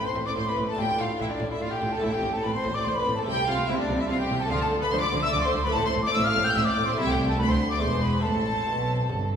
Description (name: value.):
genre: classical, baroque-style concerto movement with solo episodes.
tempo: 145 BPM.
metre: 3/4.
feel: straight.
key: A minor.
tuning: A4 = 440 Hz.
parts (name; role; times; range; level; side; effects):
hollow concert flute; melody; 0.0-9.3 s; D5 to G6; -29 LUFS; left 1 dB; none.
rich chamber violin section; melody; 0.0-9.3 s; D5 to G6; -32 LUFS; left 2 dB; none.
warm chamber violin section; second line; 0.0-9.3 s; D4 to G5; -30 LUFS; equal; none.
buff-stop harpsichord; accompaniment; 0.0-9.4 s; D2 to A4; -34 LUFS; equal; none.
dark chamber viola section; accompaniment; 0.0-9.3 s; F3 to F4; -35 LUFS; equal; none.
dark chamber cello section; bass; 0.0-9.4 s; D2 to D3; -30 LUFS; right 2 dB; none.
rich chamber double bass section; bass; 0.0-9.4 s; E1 to D2; -31 LUFS; right 1 dB; none.
room: wet recital hall reverb, RT60 1.7 s.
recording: recorded in a church or concert hall.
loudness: -23 LUFS.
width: side -8 dB against mid.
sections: 0.0-9.4 A section.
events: none.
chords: 0.0 Am; 0.8 Dm/A; 2.0 Am; 3.3 Am/C; 4.5 Dm; 5.7 Am; 7.0 Am/C; 7.4 Bm7b5/D; 7.8 E7; 8.2 Am.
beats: 0.36 | 0.78 1.20 1.61 | 2.03 2.44 2.86 | 3.27 3.68 4.10 | 4.51 4.92 5.33 | 5.75 6.16 6.58 | 6.99 7.40 7.82 | 8.25 8.67 9.10.